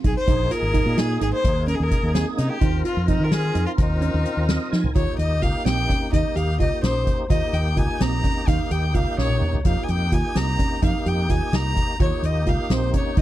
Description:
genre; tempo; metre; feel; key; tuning
progressive instrumental, band music in an uneven meter; 256 BPM (eighths); 5/8; straight; Eb mixolydian; A4 = 440 Hz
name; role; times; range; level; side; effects
thumb-piano-like synth pluck; arpeggios; 0.0-13.2 s; C4 to G4; -29 LUFS; right 8 dB; chorus
mellow fretless electric bass; bass; 0.0-13.2 s; Ab1 to F3; -23 LUFS; equal; none
soft-mallet drum kit; drums; 0.0-13.2 s; hi-hat, kick drum, snare drum, toms; -24 LUFS; equal; none
clear violin; melody; 0.1-13.2 s; Eb4 to Bb5; -27 LUFS; left 2 dB; none
tonewheel organ; accompaniment; 0.3-13.2 s; Bb3 to Ab5; -30 LUFS; left 1 dB; overdrive, chorus vibrato, slow rotary speaker
room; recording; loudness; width
little or no reverb; dry, close 1970s-style studio recording; -19 LUFS; side -14 dB against mid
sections
0.0-5.0 A section; 5.0-13.2 B section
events
tonewheel organ fill 4.3-5.0; drum fill 4.7, 9.2-9.7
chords
0.3 Bb5; 1.4 Eb7sus4; 2.6 Eb7sus2; 5.0 Eb9; 9.7 F7sus4; 12.0 Eb9

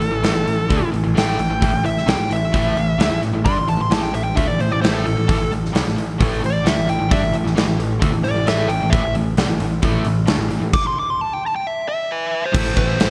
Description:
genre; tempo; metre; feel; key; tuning
hard rock; 132 BPM; 4/4; straight; A minor; A4 = 440 Hz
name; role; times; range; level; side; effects
dark smooth lead guitar; melody; 0.0-13.1 s; A4 to D6; -25 LUFS; equal; overdrive, delay
overdriven electric guitar; riff; 0.0-13.1 s; A2 to D4; -27 LUFS; equal; none
overdriven semi-hollow guitar; riff; 0.0-10.7 s; A2 to D4; -28 LUFS; equal; none
growling picked electric bass; bass; 0.0-13.1 s; A1 to G2; -25 LUFS; equal; overdrive
huge arena drum kit; drums; 0.0-13.1 s; crash cymbal, hi-hat, kick drum, snare drum; -23 LUFS; equal; vintage 12-bit sampler grit, gated reverb
overdriven electric guitar; riff; 12.5-13.1 s; A2 to A3; -28 LUFS; equal; harmonic tremolo
room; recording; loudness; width
moderate lush hall reverb, RT60 1.5 s, small room ambience; bright 1980s-style digital production; -19 LUFS; mono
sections
0.0-12.5 A section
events
lead electric guitar solo 0.0-12.5; stop 10.7-12.5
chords
0.0 A5; 12.5 Am

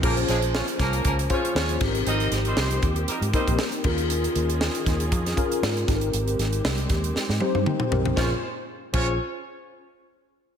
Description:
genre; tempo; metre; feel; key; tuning
polished 1980s jazz-funk pop; 118 BPM; 4/4; swing 54% on 16ths; Bb dorian; A4 = 440 Hz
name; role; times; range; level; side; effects
clear horn section; second line; 0.0-3.5, 8.2-9.1 s; F3 to Eb5; -30 LUFS; right 1 dB; slapback echo
mellow tine electric piano; accompaniment; 0.0-9.2 s; Bb3 to C5; -27 LUFS; left 3 dB; ensemble chorus, slapback echo
dark studio string section; sustained chords; 0.0-8.4 s; Bb2 to C5; -34 LUFS; equal; none
vintage muted fingered electric bass; bass; 0.0-9.2 s; Ab1 to Ab2; -26 LUFS; equal; none
tight funk drum kit; drums; 0.0-9.1 s; crash cymbal, hi-hat, kick drum, snare drum, toms; -26 LUFS; right 1 dB; none
room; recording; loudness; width
moderate lush hall reverb, RT60 1.8 s, studio reverb; big arena sound; -22 LUFS; side -8 dB against mid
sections
0.0-8.2 A section; 8.2-10.2 B section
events
drum fill 7.2-8.2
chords
0.0 Bbm9; 1.8 Abmaj9; 3.8 Eb9sus4; 5.9 Abmaj9; 8.2 Bbm9

